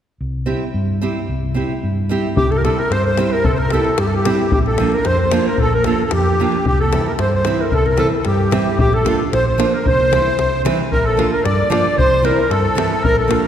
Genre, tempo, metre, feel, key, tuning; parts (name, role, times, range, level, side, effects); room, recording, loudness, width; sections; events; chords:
balkan folk, Balkan wedding band; 112 BPM; 2/4; straight; C mixolydian; A4 = 440 Hz
hollow-body short-scale fingered electric bass; bass; 0.2-13.4 s; Bb1 to G2; -20 LUFS; equal
nylon-string guitar; accompaniment; 0.5-13.5 s; E3 to G4; -21 LUFS; right 3 dB
mellow clarinet; melody; 2.4-13.5 s; G4 to D5; -18 LUFS; left 1 dB
musette accordion; second line; 2.4-13.5 s; G4 to D5; -22 LUFS; equal
davul; percussion; 2.4-13.4 s; -22 LUFS; left 2 dB
wet concert hall reverb, RT60 2.5 s; recorded in a church or concert hall; -14 LUFS; side -9 dB against mid
0.2-2.4 A section; 2.4-10.9 B section; 10.9-13.5 C section
0.2 C; 4.5 Bb; 6.7 C; 8.8 Bb; 9.9 C; 10.9 Bb; 12.0 C